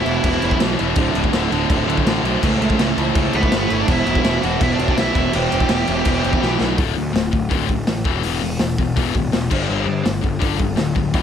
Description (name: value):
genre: punk rock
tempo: 165 BPM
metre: 4/4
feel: straight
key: unclear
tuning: A4 = 440 Hz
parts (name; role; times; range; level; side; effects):
- high-gain lead guitar; melody; 0.0-0.6, 3.4-6.6 s; B3 to G5; -23 LUFS; right 3 dB; distortion
- distorted electric guitar; riff; 0.0-11.2 s; D2 to A3; -22 LUFS; left 13 dB; overdrive
- distorted electric guitar; riff; 0.0-6.8 s; D2 to A3; -22 LUFS; right 12 dB; distortion
- fuzz picked electric bass; bass; 0.1-11.2 s; D1 to G2; -23 LUFS; equal; overdrive
- raw garage drum kit; drums; 0.1-11.2 s; crash cymbal, hi-hat, kick drum, snare drum; -20 LUFS; equal; none
room: light reverb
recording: none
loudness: -16 LUFS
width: side -8 dB against mid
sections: 0.0-6.8 A section; 6.8-11.2 B section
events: drum fill 6.4-6.8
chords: 0.0 E5; 1.0 D5; 2.4 A/C#; 3.9 E5; 6.8 D5; 8.0 E5; 9.5 G5